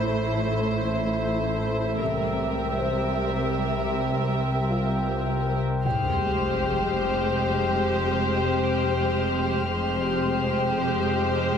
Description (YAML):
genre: cinematic, suspense film score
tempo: free time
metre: none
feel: none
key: F minor from 5.8 s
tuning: A4 = 439 Hz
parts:
  - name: muted symphonic violin section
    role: melody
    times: 0.0-11.6 s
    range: Bb4 to C5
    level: -31 LUFS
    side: left 3 dB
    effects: none
  - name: muted studio viola section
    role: accompaniment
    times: 0.0-11.6 s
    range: G3 to E5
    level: -30 LUFS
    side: right 1 dB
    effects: none
  - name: glass harmonica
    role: sustained chords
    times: 0.0-11.6 s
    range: G4 to G5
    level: -30 LUFS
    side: left 1 dB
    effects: none
  - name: muted studio cello section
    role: bass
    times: 0.0-11.6 s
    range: F2 to C3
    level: -33 LUFS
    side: right 2 dB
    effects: none
  - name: muted symphonic double bass section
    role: bass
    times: 0.0-11.6 s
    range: F1 to C2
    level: -32 LUFS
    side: right 2 dB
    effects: none
  - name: organ-like drone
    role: drone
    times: 0.0-11.6 s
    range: A1 to F2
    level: -31 LUFS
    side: left 1 dB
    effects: ensemble chorus, built-in reverb
  - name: warm grand piano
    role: texture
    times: 2.8-11.6 s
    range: F4 to G5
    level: -37 LUFS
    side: left 2 dB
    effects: none
  - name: taiko ensemble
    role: drums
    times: 5.8-7.3 s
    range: none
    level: -35 LUFS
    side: left 2 dB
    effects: none
  - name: sub drop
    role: sound effects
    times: 5.8-9.7 s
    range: none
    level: -32 LUFS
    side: equal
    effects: none
  - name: muted studio violin section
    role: second line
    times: 5.9-11.6 s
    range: G4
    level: -29 LUFS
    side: left 4 dB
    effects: none
  - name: muted chamber violin section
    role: texture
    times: 5.9-11.6 s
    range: C6 to F6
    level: -34 LUFS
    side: left 3 dB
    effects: none
room: moderate scoring stage reverb, RT60 1.6 s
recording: heavily compressed radio sound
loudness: -22 LUFS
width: side -7 dB against mid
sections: 0.0-5.8 A section; 5.8-11.6 B section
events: impact 5.8-9.7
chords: 0.0 Am; 2.0 C7; 5.8 Fmadd9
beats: free time